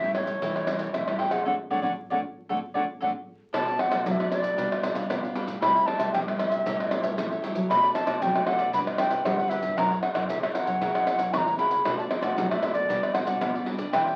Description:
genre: samba and choro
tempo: 116 BPM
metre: 4/4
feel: straight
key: D major, B minor from 3.5 s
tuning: A4 = 440 Hz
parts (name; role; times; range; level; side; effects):
- breathy wooden flute; melody; 0.0-14.2 s; C#5 to C#6; -28 LUFS; equal; none
- cavaquinho; accompaniment; 0.0-14.2 s; D4 to G5; -38 LUFS; equal; none
- nylon-string guitar; accompaniment; 0.0-14.2 s; F#2 to B4; -39 LUFS; equal; none
- nylon-string guitar; bass; 0.0-14.2 s; F#2 to B3; -37 LUFS; equal; none
- maracas, pandeiro, tamborim and surdo; percussion; 0.0-14.2 s; none; -32 LUFS; equal; none
room: wet studio ambience, RT60 0.5 s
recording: very old 78 rpm record, vinyl crackle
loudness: -26 LUFS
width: mono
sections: 0.0-3.5 A section; 3.5-14.2 B section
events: band accent 1.5-3.5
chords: 0.0 A7; 1.5 Dmaj7; 3.5 Bm7; 4.6 G7/B; 5.6 C6; 6.7 A7; 7.7 Bm7; 8.7 Gmaj7; 9.8 F#7; 11.9 Bm7; 12.9 Gmaj7/B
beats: 0.42 0.94 | 1.46 1.98 2.50 3.02 | 3.54 4.06 4.58 5.10 | 5.62 6.14 6.66 7.18 | 7.70 8.22 8.74 9.26 | 9.78 10.30 10.82 11.34 | 11.85 12.37 12.89 13.41 | 13.93

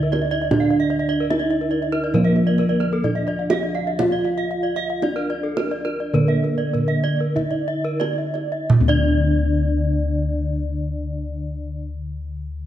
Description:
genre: Balinese gamelan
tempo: 43-78 BPM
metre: 4/4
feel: straight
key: unclear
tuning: A4 = 444 Hz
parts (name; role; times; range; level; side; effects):
- gamelan-type bronze metallophone; melody; 0.0-11.9 s; Bb3 to F4; -26 LUFS; right 1 dB; none
- gamelan-type bronze metallophone; arpeggios; 0.0-11.9 s; A4 to F5; -27 LUFS; left 2 dB; none
- gamelan-type bossed gongs; bass; 0.0-11.8 s; D2 to F4; -22 LUFS; left 1 dB; none
- gamelan-type bronze metallophone; arpeggios; 0.1-11.9 s; Bb4 to F5; -28 LUFS; right 6 dB; none
- kendang; percussion; 0.1-9.4 s; none; -24 LUFS; right 3 dB; none
room: light reverb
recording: none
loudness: -18 LUFS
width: side -11 dB against mid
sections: 0.0-8.7 A section; 8.7-12.7 B section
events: slowing down 0.5-8.7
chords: none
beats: | 0.51 1.30 2.14 3.04 | 4.00 5.03 6.14 7.36 | 8.69 10.09 11.49

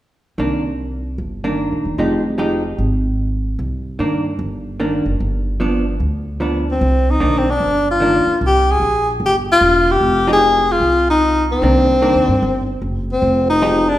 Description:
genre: jazz, small-group swing and bop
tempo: 150 BPM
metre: 4/4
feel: swing 64% on 8ths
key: C minor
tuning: A4 = 436 Hz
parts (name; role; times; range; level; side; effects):
- vintage hollow-body jazz guitar; accompaniment; 0.4-13.9 s; Eb3 to G4; -20 LUFS; right 1 dB; none
- upright bass; bass; 0.4-14.0 s; E1 to G2; -20 LUFS; equal; none
- warm tenor saxophone; melody; 6.7-14.0 s; C4 to Ab4; -14 LUFS; left 1 dB; none
room: wet recital hall reverb, RT60 1.6 s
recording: recorded in a church or concert hall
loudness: -14 LUFS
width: side -14 dB against mid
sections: 0.4-6.8 A section; 6.8-14.0 B section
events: none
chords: 0.4 Cm9; 2.0 Fm9; 3.6 Cm9; 5.2 G7; 6.8 Cm9; 10.0 Fm7; 11.6 Cm9; 13.2 Fm9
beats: | 0.38 0.78 1.19 1.59 | 1.99 2.39 2.80 3.20 | 3.60 4.00 4.41 4.81 | 5.21 5.61 6.01 6.41 | 6.81 7.21 7.61 8.01 | 8.41 8.81 9.21 9.62 | 10.02 10.41 10.81 11.21 | 11.62 12.02 12.41 12.82 | 13.22 13.62

